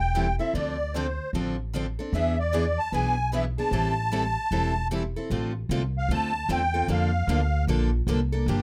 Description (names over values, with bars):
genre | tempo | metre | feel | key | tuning
acoustic string swing (jazz manouche) | 151 BPM | 4/4 | swing 61% on 8ths | A minor, D minor from 5.3 s | A4 = 442 Hz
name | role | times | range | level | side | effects
musette accordion | melody | 0.0-7.7 s | C5 to A5 | -30 LUFS | equal | none
upright bass | bass | 0.0-8.6 s | E1 to F2 | -30 LUFS | equal | none
picked steel-string acoustic guitar | accompaniment | 0.1-8.6 s | D3 to A4 | -32 LUFS | equal | none
picked steel-string acoustic guitar | accompaniment | 0.1-8.6 s | D3 to B4 | -38 LUFS | equal | none
room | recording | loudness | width
moderate small room ambience, RT60 0.5 s | rough home demo mix | -26 LUFS | mono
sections
0.0-5.3 A section; 5.3-8.6 B section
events
none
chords
0.0 Am7; 0.5 Dm7; 2.1 E7; 3.7 Am7; 5.3 Dm7; 6.9 Bbmaj9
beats
0.14 | 0.54 0.94 1.33 1.73 | 2.13 2.53 2.92 3.32 | 3.72 4.11 4.51 4.91 | 5.30 5.70 6.09 6.49 | 6.89 7.28 7.68 8.07 | 8.47